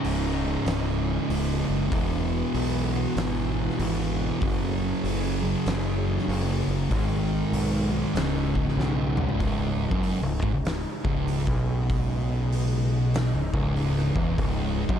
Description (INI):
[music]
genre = stoner and doom metal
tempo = 96 BPM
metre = 4/4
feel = swing 64% on 8ths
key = C# minor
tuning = A4 = 440 Hz
[part]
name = string machine, violas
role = sustained chords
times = 0.0-15.0 s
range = C#3 to A#4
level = -36 LUFS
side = left 1 dB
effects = ensemble chorus
[part]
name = thick fuzz guitar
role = riff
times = 0.0-15.0 s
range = C#2 to G#3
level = -29 LUFS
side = left 8 dB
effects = distortion
[part]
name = thick fuzz guitar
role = riff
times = 0.0-15.0 s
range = C#2 to G#3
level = -28 LUFS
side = right 8 dB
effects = distortion
[part]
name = growling fingered electric bass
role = bass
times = 0.0-15.0 s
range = C#1 to B1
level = -29 LUFS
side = left 1 dB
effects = overdrive, tube saturation
[part]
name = oversized low-tuned drum kit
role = drums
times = 0.0-15.0 s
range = hi-hat, kick drum, snare drum, toms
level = -30 LUFS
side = equal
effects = none
[sound]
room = little or no reverb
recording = dark, warm production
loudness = -23 LUFS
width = side -8 dB against mid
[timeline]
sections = 0.0-9.4 A section; 9.4-15.0 B section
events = drum fill 8.8-9.4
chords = 0.0 C#5; 1.9 E; 4.4 F#5; 6.9 G#m; 8.2 C#5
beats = 0.05 0.67 1.30 | 1.92 2.55 3.17 3.80 | 4.42 5.05 5.67 6.29 | 6.92 7.54 8.16 8.79 | 9.41 10.03 10.65 11.28 | 11.90 12.52 13.14 13.76 | 14.38